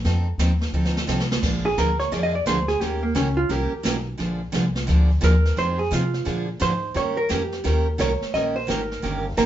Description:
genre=country, western swing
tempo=174 BPM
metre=4/4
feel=swing 64% on 8ths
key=Bb mixolydian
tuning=A4 = 438 Hz
part: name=picked steel-string acoustic guitar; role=accompaniment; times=0.0-9.5 s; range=D3 to Bb4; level=-26 LUFS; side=right 2 dB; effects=none
part: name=upright bass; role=bass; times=0.0-9.5 s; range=G1 to C3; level=-24 LUFS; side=equal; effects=none
part: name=jazz brush drum kit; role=drums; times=0.0-9.5 s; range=brushed snare drum, crash cymbal, hi-hat, kick drum, snare drum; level=-29 LUFS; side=right 1 dB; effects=none
part: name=vintage hollow-body jazz guitar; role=second line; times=1.7-9.5 s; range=Bb3 to Eb5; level=-24 LUFS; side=right 2 dB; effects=none
room=moderate studio reverb, RT60 0.6 s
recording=band playing live in one room, nothing above 7.6 kHz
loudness=-20 LUFS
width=side -11 dB against mid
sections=0.0-1.4 A section; 1.4-9.5 B section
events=drum fill 0.7-1.4; hollow-body jazz guitar solo 1.4-9.5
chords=0.0 F7; 1.4 Bb7; 2.8 Eb7; 4.2 Bb7; 5.6 Fm7; 6.3 Bb7; 7.0 Eb7

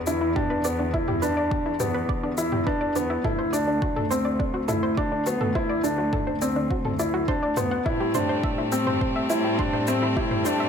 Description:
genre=piano and strings electronica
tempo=104 BPM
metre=4/4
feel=straight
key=unclear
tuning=A4 = 442 Hz
part: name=muted symphonic cello section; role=bass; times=0.0-10.7 s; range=D2 to A2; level=-31 LUFS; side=equal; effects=tube saturation, sidechain pumping
part: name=analog pluck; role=arpeggios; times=0.1-10.7 s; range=D4 to F#5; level=-30 LUFS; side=right 2 dB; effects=chorus, sidechain pumping, ping-pong delay
part: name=felt-muted upright piano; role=riff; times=0.1-10.7 s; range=B3 to E4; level=-25 LUFS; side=left 2 dB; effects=ping-pong delay
part: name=electronic shaker and toms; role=drums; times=0.1-10.6 s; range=none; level=-33 LUFS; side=right 1 dB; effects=overdrive
part: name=electronic kick drum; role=drums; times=0.4-10.3 s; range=none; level=-29 LUFS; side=equal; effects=overdrive
part: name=rich string quartet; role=sustained chords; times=7.9-10.7 s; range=G3 to C4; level=-28 LUFS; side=left 1 dB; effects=sidechain pumping
room=light reverb, small room reverb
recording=none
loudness=-22 LUFS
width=side -7 dB against mid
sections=0.0-10.7 A section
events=none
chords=0.0 Em7; 3.2 D7; 7.9 Am7

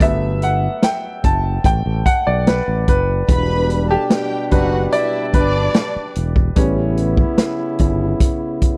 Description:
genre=lush 1970s-style soul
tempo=73 BPM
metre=4/4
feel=straight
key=E minor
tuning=A4 = 439 Hz
part: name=clear concert grand piano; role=accompaniment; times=0.0-8.8 s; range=F#3 to A5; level=-23 LUFS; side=equal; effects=none
part: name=fingered electric bass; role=bass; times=0.0-8.7 s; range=E1 to B1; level=-22 LUFS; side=equal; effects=none
part: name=vintage drum kit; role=drums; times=0.0-8.8 s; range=hi-hat, kick drum, snare drum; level=-19 LUFS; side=equal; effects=none
part: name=warm studio string section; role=second line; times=3.3-6.1 s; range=D4 to B5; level=-26 LUFS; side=equal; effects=none
part: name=clear trombone section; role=stabs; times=3.3-8.8 s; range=B2 to E4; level=-25 LUFS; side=equal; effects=none
room=little or no reverb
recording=dry, close 1970s-style studio recording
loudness=-17 LUFS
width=mono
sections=0.0-8.8 A section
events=grand piano solo 0.0-8.8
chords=0.0 Gmaj9; 3.3 Em7; 6.6 A9

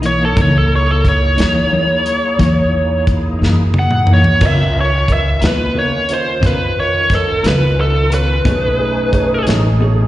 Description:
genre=slow blues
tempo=59 BPM (dotted quarters)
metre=12/8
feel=straight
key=F# mixolydian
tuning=A4 = 442 Hz
part: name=clean electric guitar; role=accompaniment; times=0.0-10.0 s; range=F#2 to A#4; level=-20 LUFS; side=left 3 dB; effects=tremolo
part: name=bright tonewheel organ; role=sustained chords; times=0.0-10.1 s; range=D#3 to G#4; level=-24 LUFS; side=right 1 dB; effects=overdrive, chorus vibrato, slow rotary speaker
part: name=upright bass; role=bass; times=0.0-10.1 s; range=A1 to F#2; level=-16 LUFS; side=equal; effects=none
part: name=warm soul drum kit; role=drums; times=0.0-9.6 s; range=crash cymbal, hi-hat, kick drum, snare drum, toms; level=-17 LUFS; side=equal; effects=none
part: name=biting lead guitar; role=melody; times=0.1-9.4 s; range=A4 to F#5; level=-16 LUFS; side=equal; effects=overdrive, slapback echo
part: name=clear upright piano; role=accompaniment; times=4.4-10.1 s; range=D#4 to D#5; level=-25 LUFS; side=right 4 dB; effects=slapback echo
room=studio reverb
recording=live gig heard through the venue's PA, recital hall reverb, nothing above 10.5 kHz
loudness=-12 LUFS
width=side -14 dB against mid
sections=0.0-10.1 A section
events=drum fill 3.4-4.4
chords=0.0 F#13; 4.4 C#13; 8.5 B13

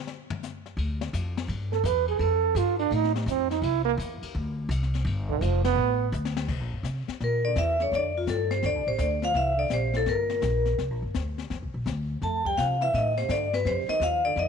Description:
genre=jazz, small-group swing and bop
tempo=168 BPM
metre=4/4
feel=swing 65% on 8ths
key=C mixolydian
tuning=A4 = 445 Hz
part: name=jazz brush drum kit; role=drums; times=0.1-14.5 s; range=brushed snare drum, crash cymbal, hi-hat, kick drum, ride cymbal, snare drum, toms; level=-37 LUFS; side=left 8 dB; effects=none
part: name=upright bass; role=bass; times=0.8-14.5 s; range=F1 to C3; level=-28 LUFS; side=left 1 dB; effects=none
part: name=mellow trombone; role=second line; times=1.7-14.5 s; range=F2 to B4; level=-29 LUFS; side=right 12 dB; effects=none
part: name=vibraphone with medium hard mallets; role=melody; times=7.2-14.5 s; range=F4 to A5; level=-26 LUFS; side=left 2 dB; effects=none
room=light reverb, small room ambience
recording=1960s-style stereo with parts hard left and right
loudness=-24 LUFS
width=side -6 dB against mid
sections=0.0-6.5 A section; 6.5-14.5 B section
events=trombone solo 0.0-6.5; drum fill 6.1-6.5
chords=0.0 N.C.; 0.8 G5; 2.2 Fadd9; 3.6 Cadd9; 5.1 G9; 6.5 C7; 7.9 F9; 9.4 C7sus2; 12.2 F9

